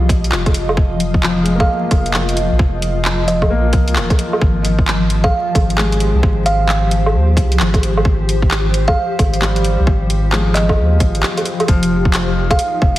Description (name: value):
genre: future garage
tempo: 132 BPM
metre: 4/4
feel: swing 63% on 16ths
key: F minor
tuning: A4 = 440 Hz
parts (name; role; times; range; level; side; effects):
- felt-muted upright piano; accompaniment; 0.0-13.0 s; F3 to Bb3; -23 LUFS; left 2 dB; sidechain pumping, analog delay
- granular cloud pad; sustained chords; 0.0-13.0 s; F3 to Eb5; -22 LUFS; left 1 dB; built-in reverb, vintage 12-bit sampler grit, sidechain pumping
- soft dub sub bass; bass; 0.0-13.0 s; Eb1 to Eb2; -17 LUFS; equal; sidechain pumping
- electronic kick drum; drums; 0.1-12.9 s; none; -14 LUFS; equal; overdrive, studio reverb
- garage drum kit; drums; 0.1-13.0 s; handclaps, hi-hat, woodblock; -21 LUFS; equal; studio reverb
- kalimba; melody; 1.6-12.7 s; Eb5 to F5; -22 LUFS; right 2 dB; tape echo
- wind-like tuned noise texture; texture; 12.4-13.0 s; Eb4 to Eb5; -37 LUFS; left 3 dB; none
room: light reverb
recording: heavily compressed radio sound, vinyl crackle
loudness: -13 LUFS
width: side -15 dB against mid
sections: 0.0-11.7 A section; 11.7-13.0 B section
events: break 11.2-11.7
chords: 0.0 Fm7; 4.4 Abmaj7; 11.7 Fm7